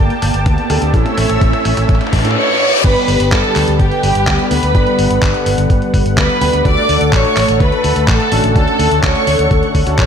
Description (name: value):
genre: italo disco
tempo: 126 BPM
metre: 4/4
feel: straight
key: unclear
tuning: A4 = 442 Hz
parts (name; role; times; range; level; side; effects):
- warm analog pad; sustained chords; 0.0-10.1 s; D3 to E6; -18 LUFS; left 1 dB; chorus
- warm concert grand piano; stabs; 0.0-10.1 s; A3 to B4; -20 LUFS; right 3 dB; analog chorus, tape echo
- fingered electric bass with an envelope filter; bass; 0.0-10.1 s; G1 to A2; -17 LUFS; equal; tube saturation
- riser and reverse cymbal; sound effects; 0.0-2.8 s; none; -19 LUFS; left 2 dB; none
- dusty soul sampler-style drum kit; drums; 0.1-10.1 s; crash cymbal, handclaps, hi-hat, toms; -22 LUFS; left 1 dB; high-pass filter on hats, high-pass filter on toms, high-pass filter on cymbals, high-pass filter on snare
- electronic kick drum; drums; 0.5-10.1 s; none; -15 LUFS; equal; none
- dark studio violin section; melody; 2.4-10.1 s; G4 to D6; -16 LUFS; equal; tape echo
room: moderate plate reverb, RT60 1.5 s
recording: dreamy mix soaked in reverb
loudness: -11 LUFS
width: side -7 dB against mid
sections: 0.0-2.8 A section; 2.8-10.1 B section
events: drum fill 0.0-2.4; riser 0.0-2.4; reverse cymbal 1.9-2.8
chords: 0.0 Gmadd9; 0.9 A; 2.8 G; 6.7 Dmaj7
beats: 0.46 | 0.94 1.42 1.89 2.37 | 2.84 3.32 3.80 4.27 | 4.75 5.22 5.70 6.18 | 6.65 7.13 7.61 8.08 | 8.56 9.04 9.51 9.99